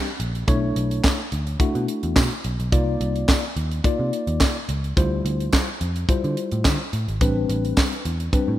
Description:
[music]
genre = early-eighties boogie funk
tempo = 107 BPM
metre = 4/4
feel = straight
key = unclear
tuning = A4 = 440 Hz
[part]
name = mellow tine electric piano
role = accompaniment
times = 0.0-8.6 s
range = G3 to D5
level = -26 LUFS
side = left 2 dB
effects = medium stereo tremolo
[part]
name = vintage muted picked electric bass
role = bass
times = 0.2-8.6 s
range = G#1 to D3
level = -24 LUFS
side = equal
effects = none
[part]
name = tight funk drum kit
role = drums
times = 0.2-8.5 s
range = handclaps, hi-hat, kick drum, snare drum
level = -22 LUFS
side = equal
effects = none
[part]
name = tambourine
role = percussion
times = 1.0-7.9 s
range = none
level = -38 LUFS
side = right 4 dB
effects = none
[sound]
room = light reverb, small room ambience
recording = rough home demo mix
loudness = -20 LUFS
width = side -13 dB against mid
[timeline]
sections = 0.0-8.6 A section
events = none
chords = 0.5 Bm11; 2.7 Cm11; 5.0 Dm11; 7.2 Am11

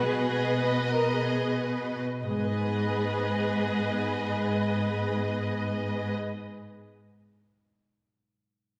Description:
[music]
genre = cinematic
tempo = free time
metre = none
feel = none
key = G# minor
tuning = A4 = 440 Hz
[part]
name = warm symphonic violin section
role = melody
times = 0.0-6.1 s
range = D#5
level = -37 LUFS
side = equal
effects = none
[part]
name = dark symphonic violin section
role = second line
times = 0.0-6.1 s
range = G#4 to B4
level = -35 LUFS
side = equal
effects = none
[part]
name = warm symphonic viola section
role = accompaniment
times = 0.0-6.1 s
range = B3 to B4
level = -36 LUFS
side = equal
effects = none
[part]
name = concert harp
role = arpeggios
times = 0.0-6.3 s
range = G#2 to B4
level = -41 LUFS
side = equal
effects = none
[part]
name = rich symphonic cello section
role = bass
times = 0.0-6.1 s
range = G#2 to B2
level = -32 LUFS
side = equal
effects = none
[sound]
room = wet scoring stage reverb, RT60 1.6 s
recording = heard from further back in the room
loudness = -28 LUFS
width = mono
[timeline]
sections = 0.0-2.2 A section; 2.2-6.6 B section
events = none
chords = 0.0 G#m/B; 2.2 G#m

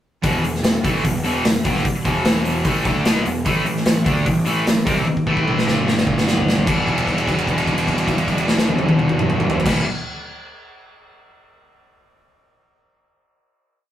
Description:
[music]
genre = classic rock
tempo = 149 BPM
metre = 4/4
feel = straight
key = E minor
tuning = A4 = 440 Hz
[part]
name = distorted electric guitar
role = riff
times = 0.2-9.9 s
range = E2 to E4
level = -20 LUFS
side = equal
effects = distortion
[part]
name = fuzz picked electric bass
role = bass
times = 0.2-9.8 s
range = E1 to D2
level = -26 LUFS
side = equal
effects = overdrive
[part]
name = big rock drum kit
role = drums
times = 0.2-9.8 s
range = crash cymbal, hi-hat, kick drum, snare drum, toms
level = -19 LUFS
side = equal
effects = none
[sound]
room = light reverb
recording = rough rehearsal-room recording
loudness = -16 LUFS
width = side -11 dB against mid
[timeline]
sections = 0.2-6.7 riff; 6.7-9.9 final chord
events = drum fill 5.1-6.7; held note 6.7-9.7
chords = 0.2 Em; 3.5 A5; 5.7 G5; 6.7 Em

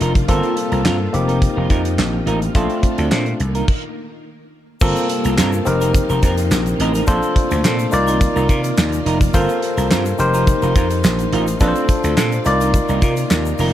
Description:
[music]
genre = early-eighties boogie funk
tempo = 106 BPM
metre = 4/4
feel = straight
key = unclear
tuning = A4 = 440 Hz
[part]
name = barky tine electric piano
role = accompaniment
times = 0.0-13.7 s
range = A3 to D5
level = -20 LUFS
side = left 2 dB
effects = overdrive
[part]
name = string machine, full ensemble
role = sustained chords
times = 0.0-13.7 s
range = Bb2 to D5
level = -26 LUFS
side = equal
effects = ensemble chorus
[part]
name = semi-hollow electric guitar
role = riff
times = 0.0-13.7 s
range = C4 to Bb4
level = -24 LUFS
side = right 4 dB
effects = analog chorus
[part]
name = vintage slap bass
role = bass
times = 0.0-13.7 s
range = F1 to C3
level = -20 LUFS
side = equal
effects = none
[part]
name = damped 70s drum kit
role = drums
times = 0.0-13.7 s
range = crash cymbal, handclaps, hi-hat, kick drum, snare drum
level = -18 LUFS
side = equal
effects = none
[part]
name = egg shaker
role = percussion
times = 4.8-13.7 s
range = none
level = -36 LUFS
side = left 10 dB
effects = none
[sound]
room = light reverb, small room ambience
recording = none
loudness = -14 LUFS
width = side -12 dB against mid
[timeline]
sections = 0.0-4.8 A section; 4.8-13.7 B section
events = stop 3.7-4.8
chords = 0.3 Gm11; 1.1 F7sus4; 2.5 Bbmaj9; 3.4 Cm11; 4.8 Gm11; 5.7 F7sus4; 7.1 Bbmaj9; 7.9 Cm11; 9.3 Gm11; 10.2 F7sus4; 11.6 Bbmaj9; 12.5 Cm11

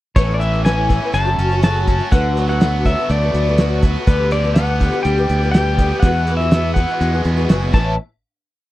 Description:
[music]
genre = folk rock and heartland rock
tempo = 123 BPM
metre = 4/4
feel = straight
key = A major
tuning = A4 = 440 Hz
[part]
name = pedal steel guitar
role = melody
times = 0.2-8.0 s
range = B4 to A5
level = -21 LUFS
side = left 2 dB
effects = none
[part]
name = picked twelve-string acoustic guitar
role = accompaniment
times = 0.2-7.9 s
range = E2 to G4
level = -23 LUFS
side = left 3 dB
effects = ensemble chorus
[part]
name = biting overdriven guitar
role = riff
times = 0.2-7.9 s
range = E2 to G4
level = -25 LUFS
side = right 2 dB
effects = none
[part]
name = fingered electric bass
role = bass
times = 0.2-8.0 s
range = F#1 to E2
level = -18 LUFS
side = equal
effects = none
[part]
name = cloth-damped thuddy drum kit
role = drums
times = 0.2-7.9 s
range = crash cymbal, hi-hat, kick drum, snare drum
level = -14 LUFS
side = equal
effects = none
[sound]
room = little or no reverb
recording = dry, close 1970s-style studio recording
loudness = -14 LUFS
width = side -16 dB against mid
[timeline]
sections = 0.2-8.0 verse; 8.0-8.7 final hit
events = none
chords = 0.2 Aadd9; 1.1 F#m; 2.1 D6; 4.1 G/D; 6.0 Eadd9; 7.7 Aadd9; 8.0 N.C.

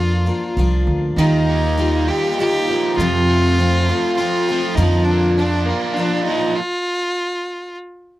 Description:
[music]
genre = rock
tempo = 100 BPM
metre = 3/4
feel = straight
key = unclear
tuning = A4 = 443 Hz
[part]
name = clear fiddle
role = melody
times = 0.0-7.8 s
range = Bb3 to G4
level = -21 LUFS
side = equal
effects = none
[part]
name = picked twelve-string acoustic guitar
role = accompaniment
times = 0.0-6.6 s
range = F2 to F4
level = -20 LUFS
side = left 2 dB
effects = none
[part]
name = upright bass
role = bass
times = 0.0-5.7 s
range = C2 to F2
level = -18 LUFS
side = right 1 dB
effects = none
[part]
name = biting overdriven guitar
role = riff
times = 1.2-6.6 s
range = F2 to G4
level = -23 LUFS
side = right 3 dB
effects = none
[sound]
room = little or no reverb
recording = dry, close 1970s-style studio recording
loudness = -15 LUFS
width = side -15 dB against mid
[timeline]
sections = 0.0-8.2 A section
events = stop 6.6-8.2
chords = 0.0 Bb/F; 1.2 Ebadd9; 3.0 F; 4.8 Bb/F

